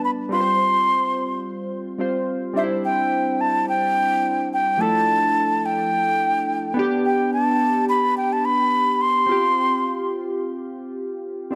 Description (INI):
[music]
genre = afrobeats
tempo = 107 BPM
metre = 4/4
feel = swing 55% on 16ths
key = C major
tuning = A4 = 440 Hz
[part]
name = breathy mellow concert flute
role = melody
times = 0.0-10.1 s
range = E5 to C6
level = -22 LUFS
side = equal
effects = none
[part]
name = warm analog keys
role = accompaniment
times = 0.0-11.6 s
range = F3 to C5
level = -26 LUFS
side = equal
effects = chorus
[sound]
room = moderate lush hall reverb, RT60 2.2 s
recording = none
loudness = -21 LUFS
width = mono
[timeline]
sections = 0.0-2.6 A section; 2.6-11.6 B section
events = none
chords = 0.3 Fsus2; 2.6 Cadd9; 4.8 Dmadd9; 6.8 G; 9.3 Fsus2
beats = | 0.32 0.88 1.44 2.00 | 2.56 3.12 3.68 4.24 | 4.80 5.36 5.92 6.49 | 7.05 7.61 8.17 8.73 | 9.29 9.85 10.41 10.97 | 11.53